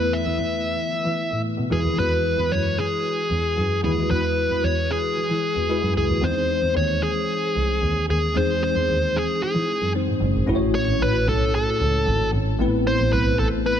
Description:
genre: 1980s-style pop.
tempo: 113 BPM.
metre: 4/4.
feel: straight.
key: unclear.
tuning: A4 = 440 Hz.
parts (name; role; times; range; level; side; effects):
dark smooth lead guitar; melody; 0.0-13.8 s; G#4 to E5; -23 LUFS; equal; overdrive, ping-pong delay.
bell-like tine electric piano; accompaniment; 0.0-13.8 s; A2 to C#5; -25 LUFS; left 2 dB; ensemble chorus.
rich double bass; bass; 0.0-13.6 s; F#1 to E3; -25 LUFS; right 1 dB; none.
room: light reverb, studio ambience.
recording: none.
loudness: -20 LUFS.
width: side -9 dB against mid.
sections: 0.0-10.5 A section; 10.5-13.8 B section.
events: none.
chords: 0.0 Asus2; 1.7 Eadd9; 6.2 G#; 10.5 A6; 12.6 Amadd9.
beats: 0.39 0.92 1.45 | 1.98 2.51 3.04 3.57 | 4.10 4.63 5.16 5.70 | 6.23 6.76 7.29 7.82 | 8.35 8.88 9.41 9.94 | 10.47 11.01 11.54 12.07 | 12.60 13.13 13.66.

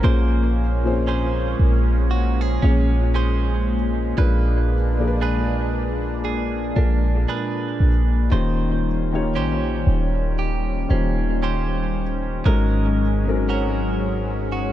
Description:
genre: contemporary R&B.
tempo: 58 BPM.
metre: 4/4.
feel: swing 58% on 16ths.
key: Bb minor.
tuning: A4 = 440 Hz.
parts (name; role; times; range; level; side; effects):
felt-muted upright piano; accompaniment; 0.0-14.7 s; Ab2 to Ab5; -25 LUFS; left 4 dB; analog delay.
lush unison pad; sustained chords; 0.0-14.7 s; Eb3 to D4; -28 LUFS; right 1 dB; chorus, phaser.
direct-recorded clean electric guitar; arpeggios; 0.0-14.7 s; Eb3 to C5; -29 LUFS; right 7 dB; analog delay.
clean 808-style bass; bass; 0.0-14.7 s; Eb1 to Bb1; -20 LUFS; equal; none.
room: digital ambience.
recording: echo-heavy mix.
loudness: -18 LUFS.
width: side -12 dB against mid.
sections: 0.0-14.7 A section.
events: none.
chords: 0.0 Bbm9; 4.2 Bb7b9; 8.3 Eb13; 12.5 Ab9sus4.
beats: | 0.04 1.08 2.11 3.15 | 4.18 5.21 6.25 7.28 | 8.32 9.35 10.39 11.42 | 12.46 13.49 14.53.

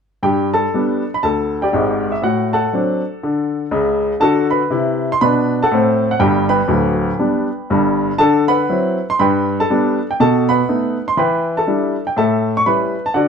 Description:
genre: jazz, stride piano.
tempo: 121 BPM.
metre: 4/4.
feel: swing 59% on 8ths.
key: G major.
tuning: A4 = 442 Hz.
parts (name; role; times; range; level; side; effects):
clear baby grand piano; solo; 0.2-13.3 s; D1 to C#6; -14 LUFS; equal; none.
room: wet club reverb, RT60 0.7 s.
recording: heard from further back in the room.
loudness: -14 LUFS.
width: side -6 dB against mid.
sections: 0.2-13.3 A section.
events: none.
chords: 0.2 G; 2.2 D7/A; 4.2 D7; 6.2 G; 8.2 D13; 9.2 G; 10.2 B7; 11.2 Em7; 12.2 A7.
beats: | 0.23 0.73 1.23 1.73 | 2.22 2.72 3.22 3.71 | 4.21 4.71 5.20 5.70 | 6.20 6.70 7.19 7.69 | 8.19 8.69 9.19 9.68 | 10.18 10.68 11.18 11.68 | 12.17 12.67 13.17.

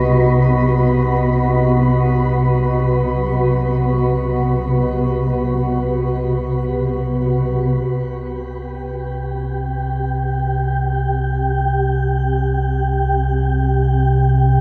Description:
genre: dark ambient drone.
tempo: free time.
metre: none.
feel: none.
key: unclear.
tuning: A4 = 440 Hz.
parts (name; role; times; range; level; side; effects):
granular cloud pad; sustained chords; 0.0-14.6 s; C3 to E5; -24 LUFS; equal; built-in reverb, shimmer reverb.
deep rumbling drone; drone; 0.0-14.6 s; C2 to C3; -20 LUFS; equal; built-in reverb, lush chorus.
wind-like tuned noise texture; texture; 0.0-14.6 s; G4 to B4; -26 LUFS; equal; built-in reverb, shimmer reverb.
room: wet huge ambient reverb, RT60 9.7 s.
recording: none.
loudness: -18 LUFS.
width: mono.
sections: 0.0-7.9 A section; 7.9-14.6 B section.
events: fade-in on ambient pad 7.9-14.6.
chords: 0.0 B/C; 7.9 C.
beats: free time.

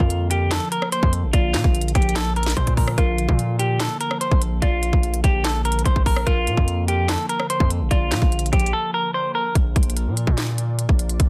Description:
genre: hip hop, trap.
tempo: 146 BPM.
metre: 4/4.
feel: half-time.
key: Bb major.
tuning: A4 = 440 Hz.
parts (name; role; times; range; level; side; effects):
semi-hollow electric guitar; melody; 0.0-9.5 s; F4 to C5; -27 LUFS; equal; digital delay.
hollow square pluck; second line; 0.0-9.5 s; Bb4 to D5; -36 LUFS; equal; chorus, digital delay.
glassy FM pad; sustained chords; 0.1-11.3 s; D3 to D5; -33 LUFS; equal; ensemble chorus, built-in reverb, phaser.
distorted 808-style bass; bass; 0.0-11.3 s; A1 to Bb2; -24 LUFS; equal; distortion.
trap drum kit; drums; 0.0-11.3 s; handclaps, hi-hat, kick drum, rim click, snare drum; -23 LUFS; equal; none.
room: little or no reverb.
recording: dense, heavily limited modern master.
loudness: -21 LUFS.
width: mono.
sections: 0.0-9.6 A section; 9.6-11.3 B section.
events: break 8.7-9.6.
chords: 0.0 Bb.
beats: 0.10 0.51 0.92 | 1.33 1.75 2.16 2.57 | 2.98 3.39 3.80 4.21 | 4.62 5.03 5.44 5.86 | 6.27 6.68 7.09 7.50 | 7.91 8.32 8.73 9.14 | 9.55 9.96 10.38 10.79 | 11.20.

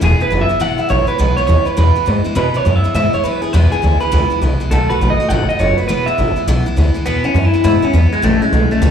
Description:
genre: rockabilly.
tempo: 205 BPM.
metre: 4/4.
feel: swing 63% on 8ths.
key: E major.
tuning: A4 = 439 Hz.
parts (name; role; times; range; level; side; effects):
electric guitar through a small old amp; melody; 0.0-8.9 s; G#3 to F#5; -17 LUFS; right 1 dB; plate reverb, slapback echo, analog delay.
picked steel-string acoustic guitar; accompaniment; 0.0-8.9 s; E2 to F#4; -20 LUFS; left 3 dB; plate reverb, slapback echo.
upright bass; bass; 0.0-8.9 s; E1 to B2; -15 LUFS; equal; none.
room: light reverb.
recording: live gig heard through the venue's PA, club reverb.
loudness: -12 LUFS.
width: side -8 dB against mid.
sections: 0.0-7.1 A section; 7.1-8.9 A section.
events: none.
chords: 0.0 E; 4.7 B7; 5.9 E; 8.2 A.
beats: | 0.02 0.31 0.61 0.90 | 1.19 1.48 1.78 2.07 | 2.36 2.66 2.95 3.24 | 3.54 3.83 4.12 4.41 | 4.71 5.00 5.29 5.59 | 5.88 6.17 6.47 6.76 | 7.05 7.35 7.64 7.93 | 8.23 8.52 8.81.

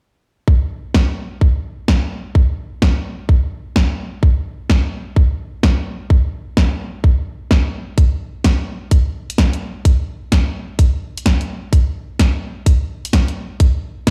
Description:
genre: UK garage, two-step garage.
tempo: 128 BPM.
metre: 4/4.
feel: swing 65% on 16ths.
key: none.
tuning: none.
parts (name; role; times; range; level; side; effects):
electronic kick drum; drums; 0.5-14.1 s; none; -15 LUFS; equal; none.
punchy analog drum machine; drums; 0.9-14.1 s; hi-hat, snare drum; -23 LUFS; equal; none.
room: light reverb.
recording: played on a big sound system in a bare room, large studio reverb.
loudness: -17 LUFS.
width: mono.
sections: 0.5-14.1 A section.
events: none.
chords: none.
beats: | 0.48 0.95 1.41 1.88 | 2.35 2.82 3.29 3.76 | 4.23 4.70 5.16 5.63 | 6.10 6.57 7.04 7.51 | 7.98 8.45 8.91 9.38 | 9.85 10.32 10.79 11.26 | 11.73 12.20 12.66 13.13 | 13.60 14.07.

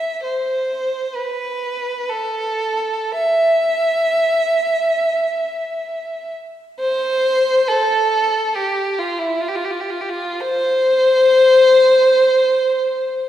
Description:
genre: classical, free, expressive piece for unaccompanied violin.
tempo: 54-72 BPM.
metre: 4/4.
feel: rubato.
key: unclear.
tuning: A4 = 439 Hz.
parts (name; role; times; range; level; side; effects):
clear violin; solo; 0.0-13.3 s; E4 to E5; -15 LUFS; equal; none.
room: wet concert hall reverb, RT60 1.7 s.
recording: recorded in a church or concert hall.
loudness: -15 LUFS.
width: side -12 dB against mid.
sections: 0.0-13.3 A section.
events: none.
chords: none.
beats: 0.24 1.16 2.12 | 3.17 4.12 5.05 5.95 | 6.83 7.72 8.57 9.43 | 10.41 11.30 12.14 12.99.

